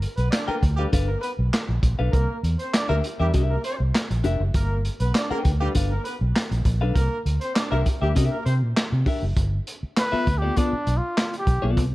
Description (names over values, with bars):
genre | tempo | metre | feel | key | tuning
funk | 100 BPM | 4/4 | straight | unclear | A4 = 439 Hz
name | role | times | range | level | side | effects
vintage muted fingered electric bass | bass | 0.0-11.9 s | F1 to C3 | -22 LUFS | equal | none
crunchy breakbeat drum kit | drums | 0.0-11.9 s | handclaps, hi-hat, kick drum, snare drum | -24 LUFS | equal | none
warm horn section | second line | 0.2-8.6 s | G3 to D5 | -31 LUFS | right 1 dB | none
clean electric guitar | accompaniment | 0.5-11.8 s | B3 to G5 | -28 LUFS | left 3 dB | none
breathy trumpet | melody | 10.0-11.7 s | D4 to B4 | -26 LUFS | equal | none
room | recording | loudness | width
small room ambience | dark, warm production | -20 LUFS | side -18 dB against mid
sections
0.0-9.4 A section; 9.4-11.9 B section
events
trumpet solo 9.4-11.9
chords
0.0 G9; 2.1 C9; 4.5 G9; 7.0 C9; 9.4 G9